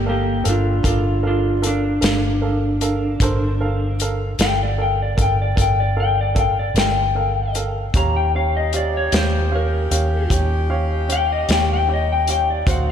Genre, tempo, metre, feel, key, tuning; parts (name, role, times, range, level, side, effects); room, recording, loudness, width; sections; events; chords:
slow blues; 51 BPM (dotted quarters); 12/8; straight; A4 = 440 Hz
electric slide guitar; melody; 0.0-12.9 s; Bb3 to Bb5; -21 LUFS; left 2 dB; slapback echo
vintage muted fingered electric bass; bass; 0.0-12.9 s; G1 to Eb2; -21 LUFS; equal
warm upright piano; accompaniment; 0.1-12.9 s; F#4 to G5; -26 LUFS; right 4 dB; slapback echo
warm soul drum kit; drums; 0.5-12.8 s; hi-hat, kick drum, snare drum; -22 LUFS; equal
mellow saxophone section; sustained chords; 7.9-12.9 s; C4 to G4; -29 LUFS; left 2 dB
moderate lush hall reverb, RT60 2.5 s; big arena sound; -17 LUFS; side -8 dB against mid
0.0-12.9 A section
electric slide guitar solo 0.0-12.9
0.0 Gm9; 7.9 Eb7